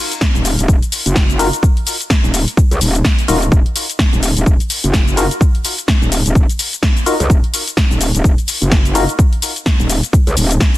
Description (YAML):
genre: bass house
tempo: 127 BPM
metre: 4/4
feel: swing 59% on 16ths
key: Eb minor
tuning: A4 = 439 Hz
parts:
  - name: house drum kit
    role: drums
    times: 0.1-10.8 s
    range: hi-hat, shaker, snare drum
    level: -18 LUFS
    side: left 1 dB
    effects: none
  - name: electronic kick drum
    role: drums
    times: 0.2-10.7 s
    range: none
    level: -12 LUFS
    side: equal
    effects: none
  - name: metallic wobble bass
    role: bass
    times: 0.3-10.6 s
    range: Eb1 to Db2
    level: -16 LUFS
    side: equal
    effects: chorus, overdrive, sidechain pumping
  - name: percussive organ stab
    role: stabs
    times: 1.4-9.0 s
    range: Eb4 to Bb4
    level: -21 LUFS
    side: left 3 dB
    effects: lush chorus, sidechain pumping, dub echo
room: digital ambience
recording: dense, heavily limited modern master, lossy compression artefacts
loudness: -12 LUFS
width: side -16 dB against mid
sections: 0.0-10.8 A section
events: none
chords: 0.0 Ebm